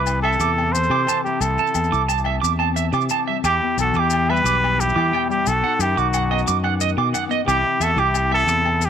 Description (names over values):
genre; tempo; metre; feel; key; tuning
highlife guitar band; 119 BPM (dotted quarters); 12/8; straight; unclear; A4 = 440 Hz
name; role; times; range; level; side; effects
trumpet with straight mute; melody; 0.0-8.9 s; F#4 to C5; -20 LUFS; equal; none
dark trumpet; second line; 0.0-8.9 s; D#4 to A4; -33 LUFS; right 10 dB; none
nylon-string guitar; accompaniment; 0.0-8.9 s; E2 to F#4; -28 LUFS; left 13 dB; none
fingered electric bass; bass; 0.0-8.9 s; B1 to E3; -23 LUFS; equal; none
agogo bells; percussion; 0.1-8.8 s; none; -31 LUFS; left 11 dB; none
maracas; percussion; 0.1-8.9 s; none; -30 LUFS; left 14 dB; none
electric guitar at the edge of break-up; arpeggios; 0.2-8.5 s; D#5 to D6; -24 LUFS; right 12 dB; tape echo
room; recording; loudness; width
light reverb; 1960s-style stereo with parts hard left and right; -17 LUFS; side -8 dB against mid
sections
0.0-8.9 A section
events
none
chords
0.0 Am/C; 3.4 Em; 5.5 B; 7.5 Am/C